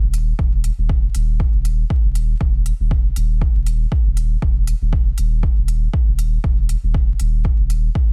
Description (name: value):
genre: dub techno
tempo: 119 BPM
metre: 4/4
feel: swing 55% on 16ths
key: unclear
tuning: A4 = 440 Hz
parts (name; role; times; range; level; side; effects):
- pure sine sub bass; bass; 0.0-8.1 s; Eb1; -21 LUFS; equal; sidechain pumping
- electronic hi-hat; drums; 0.1-7.8 s; none; -36 LUFS; equal; studio reverb
- electronic kick drum; drums; 0.4-8.1 s; none; -20 LUFS; equal; studio reverb
room: little or no reverb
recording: dense, heavily limited modern master, vinyl crackle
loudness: -19 LUFS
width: mono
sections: 0.0-8.1 A section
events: none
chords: none